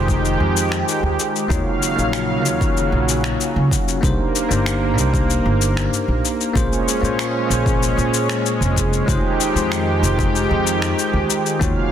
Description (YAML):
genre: sunset chillout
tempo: 95 BPM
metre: 4/4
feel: straight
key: F minor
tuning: A4 = 440 Hz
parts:
  - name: bell-like tine electric piano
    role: accompaniment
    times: 0.0-11.9 s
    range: Ab3 to Db5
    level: -22 LUFS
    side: right 1 dB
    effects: auto-pan, tape echo
  - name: lush unison pad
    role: sustained chords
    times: 0.0-11.9 s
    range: Db3 to F5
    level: -22 LUFS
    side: equal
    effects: chorus
  - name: upright bass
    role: bass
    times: 0.0-11.7 s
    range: F1 to Bb2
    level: -21 LUFS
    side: equal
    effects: tube saturation
  - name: electronic kick drum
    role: drums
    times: 0.1-11.7 s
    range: none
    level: -22 LUFS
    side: equal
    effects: overdrive
  - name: electronic shaker and finger snaps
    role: drums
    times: 0.1-11.7 s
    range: none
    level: -26 LUFS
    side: left 6 dB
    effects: overdrive, soft clipping on snare
room: light reverb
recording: dense, heavily limited modern master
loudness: -16 LUFS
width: side -9 dB against mid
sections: 0.0-11.9 A section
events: none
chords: 0.0 Fm9; 1.5 Ebm9; 4.0 Cm9; 6.6 Bbm9; 9.1 Fm9